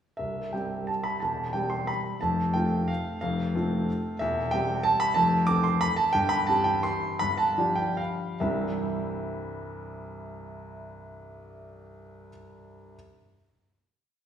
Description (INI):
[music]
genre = classical, piano waltz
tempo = 135-198 BPM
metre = 3/4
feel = rubato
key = C major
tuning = A4 = 438 Hz
[part]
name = clear grand piano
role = solo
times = 0.2-13.0 s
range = C1 to D6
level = -25 LUFS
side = equal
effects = none
[sound]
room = wet recital hall reverb, RT60 1.6 s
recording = small room ambience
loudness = -24 LUFS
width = side -9 dB against mid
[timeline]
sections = 0.2-8.4 A section; 8.4-10.8 final chord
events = slowing down 5.6-8.4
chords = 0.2 C; 1.2 C/E; 2.2 F; 4.2 C/E; 5.2 Fmaj7; 6.1 C/G; 7.2 G5; 8.4 C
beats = | 0.19 0.54 0.89 | 1.22 1.54 1.89 | 2.22 2.55 2.89 | 3.22 3.54 3.87 | 4.20 4.52 4.85 | 5.17 5.48 5.82 | 6.15 6.49 6.85 | 7.22 7.58 7.99 | 8.42 8.82 9.24 | 9.64 10.03 10.44